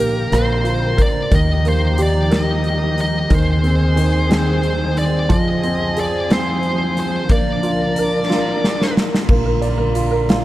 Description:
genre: six-eight pop ballad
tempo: 60 BPM (dotted quarters)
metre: 6/8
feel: straight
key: unclear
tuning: A4 = 439 Hz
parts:
  - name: high-gain lead guitar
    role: melody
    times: 0.0-8.9 s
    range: Bb4 to Eb5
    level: -22 LUFS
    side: equal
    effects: distortion, tape echo
  - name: clear upright piano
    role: accompaniment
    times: 0.0-10.4 s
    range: Eb3 to D5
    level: -22 LUFS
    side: right 2 dB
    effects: none
  - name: dark chamber string section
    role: sustained chords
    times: 0.0-10.4 s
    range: D3 to Bb4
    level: -23 LUFS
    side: left 1 dB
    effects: none
  - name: upright bass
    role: bass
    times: 0.0-10.4 s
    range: Bb1 to F2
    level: -19 LUFS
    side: equal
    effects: none
  - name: huge arena drum kit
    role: drums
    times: 0.3-10.4 s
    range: crash cymbal, hi-hat, kick drum, rim click, snare drum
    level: -20 LUFS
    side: equal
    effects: none
room: small room ambience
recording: dark, warm production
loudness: -15 LUFS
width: side -15 dB against mid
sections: 0.0-9.3 A section; 9.3-10.4 B section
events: drum fill 8.3-9.3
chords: 0.3 Bbadd9; 1.3 Ebadd9; 3.3 Ab/Eb; 5.3 Fm; 7.3 Bb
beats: 0.32 | 1.31 2.31 | 3.31 4.30 | 5.30 6.29 | 7.29 8.29 | 9.28 10.28

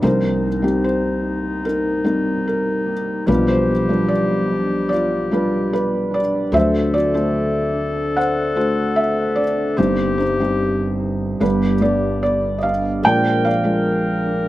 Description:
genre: folk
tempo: 74 BPM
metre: 4/4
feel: straight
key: C minor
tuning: A4 = 436 Hz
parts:
  - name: felt-muted upright piano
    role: melody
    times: 0.0-14.5 s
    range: G1 to G5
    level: -18 LUFS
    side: equal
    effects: none
  - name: warm clarinet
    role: second line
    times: 0.0-14.5 s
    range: Eb4 to Bb4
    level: -24 LUFS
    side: left 3 dB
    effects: slapback echo
  - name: concert harp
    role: arpeggios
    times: 0.0-14.5 s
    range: F3 to A4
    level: -28 LUFS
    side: right 2 dB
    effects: none
  - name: upright bass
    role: bass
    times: 0.0-14.5 s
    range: G1 to D2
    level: -29 LUFS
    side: equal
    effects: none
room: little or no reverb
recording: recorded outdoors, with no room sound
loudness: -16 LUFS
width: side -15 dB against mid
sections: 0.0-14.5 A section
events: none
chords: 0.0 Cm7; 3.3 G7/B; 6.5 D7; 9.8 Cm/G; 11.4 G; 13.0 Bb7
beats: | 0.02 0.83 1.65 2.46 | 3.27 4.08 4.90 5.71 | 6.52 7.34 8.15 8.96 | 9.78 10.59 11.41 12.22 | 13.04 13.85

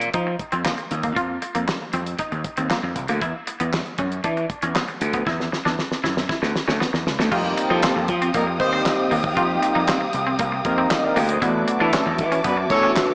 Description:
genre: early-eighties boogie funk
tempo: 117 BPM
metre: 4/4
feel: straight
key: unclear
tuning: A4 = 440 Hz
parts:
  - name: gritty slap bass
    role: bass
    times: 0.0-12.9 s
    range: C2 to F3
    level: -24 LUFS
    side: equal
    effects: overdrive
  - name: damped 70s drum kit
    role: drums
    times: 0.0-13.1 s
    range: crash cymbal, handclaps, hi-hat, kick drum, snare drum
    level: -25 LUFS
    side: equal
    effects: none
  - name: electric guitar at the edge of break-up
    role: riff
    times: 0.1-12.9 s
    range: A3 to F4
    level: -26 LUFS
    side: equal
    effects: wide subtle chorus, slapback echo
  - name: chorused polysynth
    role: accompaniment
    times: 7.3-13.1 s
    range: A3 to G5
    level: -23 LUFS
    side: equal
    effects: none
  - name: warm studio string section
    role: sustained chords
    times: 7.3-13.1 s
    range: F#4 to Eb6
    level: -26 LUFS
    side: equal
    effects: none
  - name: clear horn section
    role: second line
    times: 7.7-12.9 s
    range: Eb3 to C#5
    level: -23 LUFS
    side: equal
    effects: slapback echo
room: moderate scoring stage reverb, RT60 2.2 s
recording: big arena sound, small speaker sound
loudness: -19 LUFS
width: side -37 dB against mid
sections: 0.0-7.3 A section; 7.3-13.1 B section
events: drum fill 5.3-7.3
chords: 0.0 F7sus4; 3.2 E7sus2; 7.3 F9sus4; 11.4 E9sus4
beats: 0.14 0.65 | 1.16 1.68 2.19 2.70 | 3.22 3.73 4.24 4.75 | 5.27 5.78 6.29 6.80 | 7.32 7.83 8.34 8.86 | 9.37 9.88 10.39 10.91 | 11.42 11.93 12.45 12.96

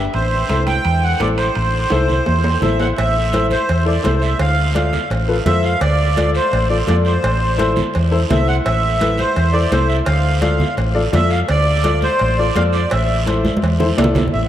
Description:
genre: latin, cumbia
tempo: 169 BPM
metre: 4/4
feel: straight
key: A minor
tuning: A4 = 440 Hz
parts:
  - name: warm upright piano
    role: accompaniment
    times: 0.0-14.2 s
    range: E4 to D5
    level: -21 LUFS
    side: left 3 dB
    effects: none
  - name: hollow-body short-scale fingered electric bass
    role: bass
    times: 0.0-14.5 s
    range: A1 to F2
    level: -18 LUFS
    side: equal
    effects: none
  - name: accordion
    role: melody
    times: 0.1-14.5 s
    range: C5 to G5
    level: -20 LUFS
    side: right 1 dB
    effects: light tremolo tuning
  - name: guiro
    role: percussion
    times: 0.1-14.5 s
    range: none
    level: -31 LUFS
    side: right 6 dB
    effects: none
  - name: timbales and cowbell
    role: percussion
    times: 0.1-14.2 s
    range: none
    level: -27 LUFS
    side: right 3 dB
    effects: none
  - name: congas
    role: percussion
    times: 0.5-14.4 s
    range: none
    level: -26 LUFS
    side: right 1 dB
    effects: none
room: wet cathedral reverb, RT60 5.3 s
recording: in a vast, echoing space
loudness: -14 LUFS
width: side -11 dB against mid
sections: 0.0-3.0 A section; 3.0-14.3 B section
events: drum fill 1.9-3.0, 13.4-14.3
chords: 0.1 Am; 4.4 Dm; 7.2 Am; 10.1 Dm; 12.9 Am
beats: | 0.14 0.49 0.85 1.20 | 1.55 1.91 2.27 2.62 | 2.97 3.33 3.68 4.04 | 4.39 4.75 5.10 5.46 | 5.81 6.17 6.52 6.88 | 7.23 7.58 7.94 8.29 | 8.65 9.01 9.36 9.71 | 10.07 10.43 10.78 11.14 | 11.49 11.85 12.20 12.56 | 12.91 13.27 13.62 13.98 | 14.33

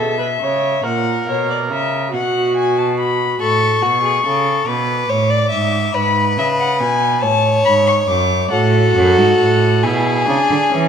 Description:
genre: classical, baroque-style fugue for string quartet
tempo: 47 BPM (dotted quarters)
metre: 6/8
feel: straight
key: B minor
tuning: A4 = 436 Hz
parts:
  - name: dark violin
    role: melody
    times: 0.0-10.9 s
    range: C#5 to D6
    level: -19 LUFS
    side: left 6 dB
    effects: none
  - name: warm viola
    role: accompaniment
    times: 0.0-3.4, 8.5-10.9 s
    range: C#4 to C#5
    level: -18 LUFS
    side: right 1 dB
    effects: none
  - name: rich cello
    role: bass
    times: 0.0-10.9 s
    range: F#2 to E3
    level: -19 LUFS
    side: right 4 dB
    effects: none
  - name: rich violin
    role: second line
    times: 3.4-10.9 s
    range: F#4 to E5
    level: -18 LUFS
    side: left 2 dB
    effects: none
room: moderate scoring stage reverb, RT60 1.5 s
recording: none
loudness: -13 LUFS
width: side -7 dB against mid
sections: 0.0-10.9 A section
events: none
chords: 0.0 C#m; 0.8 F#7/A#; 2.1 B5; 3.4 F#m/A (rootless); 4.7 Bm; 5.9 E/G# (rootless); 7.2 A; 9.8 E7/B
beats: | 0.85 2.13 | 3.41 4.68 | 5.94 7.22 | 8.52 9.83

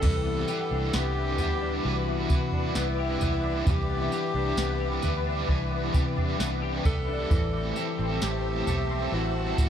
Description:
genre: dream pop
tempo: 66 BPM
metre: 4/4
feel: straight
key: unclear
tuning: A4 = 442 Hz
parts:
  - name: clear alto saxophone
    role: melody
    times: 0.0-9.7 s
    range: E4 to A4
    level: -33 LUFS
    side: left 1 dB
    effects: digital delay
  - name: cranked stack guitar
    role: accompaniment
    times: 0.0-9.7 s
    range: A2 to B4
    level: -34 LUFS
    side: right 4 dB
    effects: overdrive, tremolo, lush chorus
  - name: ethereal airy pad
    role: sustained chords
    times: 0.0-9.7 s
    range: B4 to E6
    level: -35 LUFS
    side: left 3 dB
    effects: ensemble chorus, built-in reverb
  - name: semi-hollow electric guitar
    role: arpeggios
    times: 0.0-9.7 s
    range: E3 to G4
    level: -34 LUFS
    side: left 6 dB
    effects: ensemble chorus, digital delay
  - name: vintage muted fingered electric bass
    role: bass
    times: 0.0-9.7 s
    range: A1 to C3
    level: -30 LUFS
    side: equal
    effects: none
  - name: soft vintage rhythm box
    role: drums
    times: 0.0-9.7 s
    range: crash cymbal, kick drum, snare drum, tambourine, toms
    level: -27 LUFS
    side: right 1 dB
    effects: none
  - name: large celesta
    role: texture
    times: 0.6-7.7 s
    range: D5 to F#5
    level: -44 LUFS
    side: left 1 dB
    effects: none
room: light reverb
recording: dark, warm production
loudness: -25 LUFS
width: side -9 dB against mid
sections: 0.0-9.7 A section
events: none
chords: 0.0 Cmaj9; 7.3 Am7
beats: | 0.03 0.94 1.85 2.76 | 3.67 4.58 5.49 6.40 | 7.31 8.21 9.12

